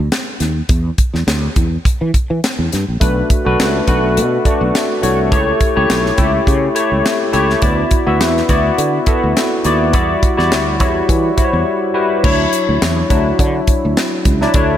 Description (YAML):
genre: polished 1980s jazz-funk pop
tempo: 104 BPM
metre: 4/4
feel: swing 54% on 16ths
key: unclear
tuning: A4 = 440 Hz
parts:
  - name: sustaining fretless electric bass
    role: bass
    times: 0.0-14.7 s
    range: A#1 to E3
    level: -17 LUFS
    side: equal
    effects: analog chorus
  - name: tight funk drum kit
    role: drums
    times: 0.1-14.7 s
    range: crash cymbal, hi-hat, kick drum, snare drum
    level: -16 LUFS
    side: equal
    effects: gated reverb
  - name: barky tine electric piano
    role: accompaniment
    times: 3.0-14.8 s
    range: F#3 to E5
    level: -15 LUFS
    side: left 1 dB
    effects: overdrive, analog chorus
room: light reverb, small room ambience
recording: none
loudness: -12 LUFS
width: side -10 dB against mid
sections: 0.0-12.2 A section; 12.2-14.8 B section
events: break 11.7-12.2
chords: 0.0 N.C.; 3.0 Bm7; 5.3 A7; 7.6 D69; 9.9 Em9; 12.2 Dmaj9